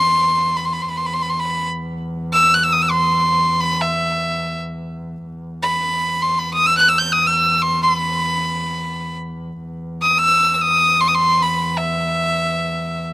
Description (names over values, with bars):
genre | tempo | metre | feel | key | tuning
Arabic maqam ensemble | free time | none | none | unclear | A4 = 445 Hz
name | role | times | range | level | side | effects
rich violin | melody | 0.0-13.1 s | E5 to G6 | -15 LUFS | equal | slapback echo
rich double bass | drone | 0.0-13.1 s | E2 | -26 LUFS | equal | none
room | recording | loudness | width
little or no reverb | recorded outdoors, with no room sound | -15 LUFS | side -19 dB against mid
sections
0.0-5.3 A section; 5.3-13.1 A section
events
none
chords
none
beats
free time